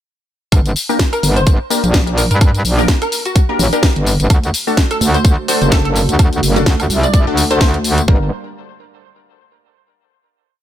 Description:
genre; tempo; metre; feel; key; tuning
bass house; 127 BPM; 4/4; swing 56% on 16ths; G harmonic minor; A4 = 444 Hz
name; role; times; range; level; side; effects
metallic wobble bass; bass; 0.5-8.3 s; F#1 to G2; -14 LUFS; equal; distortion, chorus, tube saturation, sidechain pumping
electronic kick drum; drums; 0.5-8.2 s; none; -12 LUFS; equal; none
garage drum kit; drums; 0.5-8.1 s; hi-hat, snare drum, tambourine, woodblock; -19 LUFS; left 1 dB; none
orchestra-hit-like synth stab; stabs; 0.9-8.3 s; A3 to Bb4; -20 LUFS; left 2 dB; built-in reverb, sidechain pumping, ping-pong delay
hollow square pluck; melody; 1.1-7.7 s; F#4 to D5; -22 LUFS; equal; ensemble chorus, ping-pong delay
dark analog pad; sustained chords; 4.9-8.3 s; A3 to F#4; -24 LUFS; right 3 dB; chorus, sidechain pumping
room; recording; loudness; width
little or no reverb; none; -11 LUFS; side -11 dB against mid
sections
0.5-8.1 drop; 8.1-10.0 final chord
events
drop 0.5-8.1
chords
0.5 Gm; 4.3 D; 8.1 Gm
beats
| 0.52 0.99 1.47 1.94 | 2.41 2.88 3.36 3.83 | 4.30 4.77 5.25 5.72 | 6.19 6.66 7.14 7.61 | 8.08

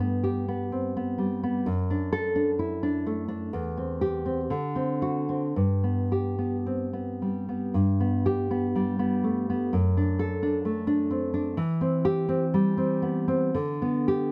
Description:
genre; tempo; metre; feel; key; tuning
romantic piece for solo classical guitar; 53-66 BPM; 2/4; rubato; G major; A4 = 438 Hz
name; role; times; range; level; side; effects
nylon-string guitar; solo; 0.0-14.3 s; E2 to A4; -27 LUFS; equal; none
room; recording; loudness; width
light reverb; none; -27 LUFS; mono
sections
0.0-7.8 A section; 7.8-14.3 A section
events
none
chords
0.0 G; 1.7 D/F#; 3.5 C/E; 4.5 D7; 5.6 G; 9.7 D/F#; 11.6 C/E; 13.6 G/D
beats
0.72 | 1.66 2.59 | 3.52 4.50 | 5.55 6.67 | 7.75 8.76 | 9.73 10.66 | 11.59 12.54 | 13.55

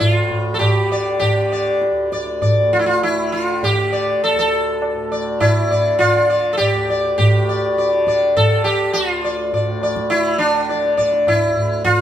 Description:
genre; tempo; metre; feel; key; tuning
indian classical, Hindustani; 101 BPM; 5/4; straight; D raga bhimpalasi; A4 = 439 Hz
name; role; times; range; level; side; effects
sitar; melody; 0.0-12.0 s; D4 to D5; -16 LUFS; equal; none
tanpura; drone; 0.0-12.0 s; D2 to D3; -27 LUFS; right 1 dB; none
tabla; percussion; 0.0-12.0 s; none; -20 LUFS; right 1 dB; none
room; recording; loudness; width
wet stone room reverb, RT60 1.1 s; band playing live in one room; -15 LUFS; side -10 dB against mid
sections
0.0-7.2 A section; 7.2-12.0 B section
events
speeding up 0.0-12.0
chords
none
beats
0.01 0.62 | 1.22 1.82 2.43 3.03 3.63 | 4.22 4.82 5.42 6.01 6.60 | 7.19 7.78 8.36 8.95 9.53 | 10.11 10.69 11.27 11.85

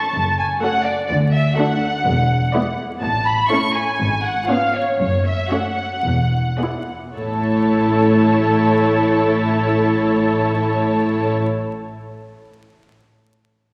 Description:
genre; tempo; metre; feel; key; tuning
quick classical-period movement for symphony orchestra; 103-126 BPM; 4/4; rubato; A major; A4 = 440 Hz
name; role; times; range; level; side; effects
muted studio violin section; melody; 0.0-11.4 s; C#5 to C#6; -24 LUFS; equal; none
muted studio violin section; second line; 0.0-11.4 s; E4 to D5; -28 LUFS; equal; none
muted studio viola section; accompaniment; 0.0-11.4 s; G#3 to E4; -22 LUFS; equal; none
muted studio cello section; bass; 0.1-11.4 s; D2 to A2; -30 LUFS; equal; none
muted studio double bass section; bass; 0.1-11.4 s; E1 to D2; -26 LUFS; equal; none
room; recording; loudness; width
wet concert hall reverb, RT60 2.3 s; vinyl crackle; -18 LUFS; mono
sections
0.0-7.2 A section; 7.2-11.7 B section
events
slowing down 2.1-7.2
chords
0.2 F#m; 1.1 D; 2.1 E7; 3.0 A; 4.0 C#7/G#; 5.0 F#m; 6.1 E7; 7.2 A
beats
0.15 0.63 | 1.11 1.58 2.06 2.54 | 3.02 3.50 4.00 4.49 | 5.00 5.52 6.05 6.60 | 7.17 7.74 8.31 8.88 | 9.44 10.01 10.57 11.14

